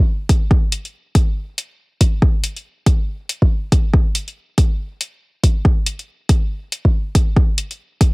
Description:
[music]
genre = dubstep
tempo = 140 BPM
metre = 4/4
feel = swing 60% on 16ths, half-time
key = none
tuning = none
[part]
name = electronic hi-hat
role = drums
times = 0.3-8.1 s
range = none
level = -22 LUFS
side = left 2 dB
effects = overdrive
[part]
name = electronic kick drum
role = drums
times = 0.3-8.1 s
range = none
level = -14 LUFS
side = equal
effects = overdrive
[sound]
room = little or no reverb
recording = heavily compressed radio sound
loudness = -16 LUFS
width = side -26 dB against mid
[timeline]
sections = 0.0-8.1 A section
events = none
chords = none

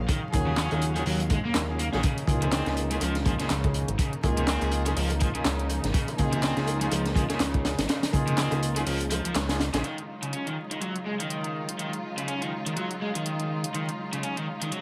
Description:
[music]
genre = breakbeat, breaks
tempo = 123 BPM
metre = 4/4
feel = swing 57% on 16ths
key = Eb minor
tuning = A4 = 442 Hz
[part]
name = dark studio string section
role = sustained chords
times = 0.0-14.8 s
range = Db3 to F5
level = -38 LUFS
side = equal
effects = vintage 12-bit sampler grit, sidechain pumping
[part]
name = fat analog bass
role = bass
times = 0.0-9.8 s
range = Ab1 to Eb2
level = -31 LUFS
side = equal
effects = tube saturation
[part]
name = crunchy overdriven guitar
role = riff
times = 0.1-14.8 s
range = C3 to Db4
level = -34 LUFS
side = equal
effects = low-pass filter, dub echo
[part]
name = crunchy breakbeat drum kit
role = drums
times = 0.1-9.8 s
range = hi-hat, kick drum, snare drum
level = -31 LUFS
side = equal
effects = none
[part]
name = bongos and congas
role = percussion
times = 0.1-9.8 s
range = none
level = -40 LUFS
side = equal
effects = none
[part]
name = warm brass ensemble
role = stabs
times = 0.3-9.8 s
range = Bb3 to Ab4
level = -36 LUFS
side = equal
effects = dub echo
[part]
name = punchy analog drum machine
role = drums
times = 0.6-14.8 s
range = handclaps, hi-hat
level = -37 LUFS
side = equal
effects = none
[sound]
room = light reverb, small room ambience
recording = vinyl crackle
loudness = -27 LUFS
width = mono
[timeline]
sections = 0.0-9.8 A section; 9.8-14.8 B section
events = kick drops out 8.9-9.8; band accent 9.4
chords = 0.0 Ebm11; 2.0 Db69; 9.8 Ebm11

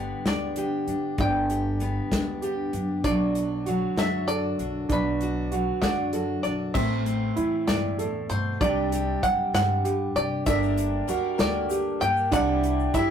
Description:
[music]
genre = indie folk with a building arrangement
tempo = 65 BPM (dotted quarters)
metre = 6/8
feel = straight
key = unclear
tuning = A4 = 440 Hz
[part]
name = bluegrass banjo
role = melody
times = 0.0-13.1 s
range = B4 to G5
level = -28 LUFS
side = left 1 dB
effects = none
[part]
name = fingerpicked steel-string acoustic guitar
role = accompaniment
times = 0.0-10.4 s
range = F#2 to G4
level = -29 LUFS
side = left 3 dB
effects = none
[part]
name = upright bass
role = bass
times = 0.0-13.1 s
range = G1 to C3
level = -30 LUFS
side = equal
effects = none
[part]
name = natural country drum kit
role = drums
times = 0.3-13.1 s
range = crash cymbal, hi-hat, kick drum, snare drum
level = -30 LUFS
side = left 2 dB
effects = none
[part]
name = warm upright piano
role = arpeggios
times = 0.6-13.1 s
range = C4 to A4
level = -28 LUFS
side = right 5 dB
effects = none
[part]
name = picked twelve-string acoustic guitar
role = accompaniment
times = 10.5-13.1 s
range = G2 to Bb4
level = -30 LUFS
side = left 4 dB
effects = none
[part]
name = egg shaker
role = percussion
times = 10.5-13.1 s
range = none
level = -44 LUFS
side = left 8 dB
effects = none
[sound]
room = moderate studio reverb, RT60 0.5 s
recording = rough rehearsal-room recording, warm saturation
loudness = -23 LUFS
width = side -8 dB against mid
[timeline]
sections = 0.0-6.7 A section; 6.7-13.1 B section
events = none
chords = 0.0 G; 3.0 Bm; 6.7 Am; 8.6 Csus2; 10.5 Gm; 12.3 Cadd9

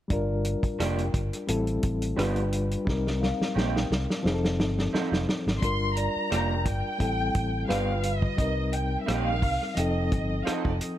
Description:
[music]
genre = lush 1970s-style soul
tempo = 87 BPM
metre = 4/4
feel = swing 54% on 16ths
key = G minor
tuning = A4 = 440 Hz
[part]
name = reed electric piano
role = accompaniment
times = 0.1-11.0 s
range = D3 to B4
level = -30 LUFS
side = left 2 dB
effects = overdrive, fast tremolo
[part]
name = fingered electric bass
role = bass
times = 0.1-10.8 s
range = F1 to C2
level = -30 LUFS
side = equal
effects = none
[part]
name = warm soul drum kit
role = drums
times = 0.1-11.0 s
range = hi-hat, kick drum, rim click, snare drum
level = -29 LUFS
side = equal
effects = none
[part]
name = celesta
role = texture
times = 0.1-11.0 s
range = B4 to G5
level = -40 LUFS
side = right 2 dB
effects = none
[part]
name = electric guitar through a small old amp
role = riff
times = 0.8-10.7 s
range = Eb3 to A4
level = -33 LUFS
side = right 5 dB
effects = spring reverb
[part]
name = dark studio violin section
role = melody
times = 5.6-10.8 s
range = D5 to C6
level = -31 LUFS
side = equal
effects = none
[sound]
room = studio reverb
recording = none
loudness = -24 LUFS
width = side -12 dB against mid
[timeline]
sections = 0.1-5.6 A section; 5.6-11.0 B section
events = drum fill 2.9-5.6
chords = 0.1 Gm7; 1.5 Am7; 2.2 G7; 2.9 Cm7; 4.2 F7; 5.6 Gm7; 7.0 Am7; 7.7 G7; 8.4 Cm7; 9.8 F7

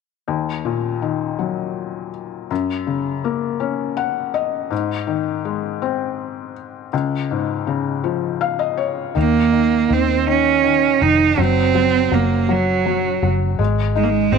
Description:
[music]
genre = pop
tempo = 54 BPM (dotted quarters)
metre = 6/8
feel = straight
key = Eb dorian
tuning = A4 = 440 Hz
[part]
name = felt-muted upright piano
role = accompaniment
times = 0.3-14.4 s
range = Db2 to Gb5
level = -21 LUFS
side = left 10 dB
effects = none
[part]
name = clear cello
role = melody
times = 9.2-14.4 s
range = Gb3 to Eb4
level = -16 LUFS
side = right 10 dB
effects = none
[part]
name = vintage muted fingered electric bass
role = bass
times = 9.2-14.4 s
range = F1 to Eb2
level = -21 LUFS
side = right 1 dB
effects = none
[sound]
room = light reverb, small room ambience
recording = 1960s-style stereo with parts hard left and right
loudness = -17 LUFS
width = side -5 dB against mid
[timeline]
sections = 0.3-9.2 A section; 9.2-14.4 B section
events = felt piano fill 3.6-4.7, 8.0-9.2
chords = 0.3 Ebm; 2.5 Gb; 4.7 Ab; 6.9 Db; 9.2 Eb5; 11.4 N.C.; 13.6 Ab5

